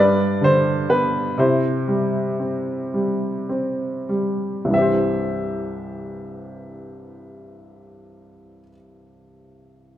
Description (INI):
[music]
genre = classical, lyrical solo piano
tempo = 30-44 BPM (dotted quarters)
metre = 6/8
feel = rubato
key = C major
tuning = A4 = 443 Hz
[part]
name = warm upright piano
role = solo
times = 0.0-10.0 s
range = C2 to E5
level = -19 LUFS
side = equal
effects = none
[sound]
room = moderate scoring stage reverb, RT60 1.5 s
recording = minimal, uncompressed stereo recording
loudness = -19 LUFS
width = side -12 dB against mid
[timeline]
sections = 0.0-4.7 A section; 4.7-8.5 B section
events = slowing down 0.0-4.7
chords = 0.0 G; 1.4 C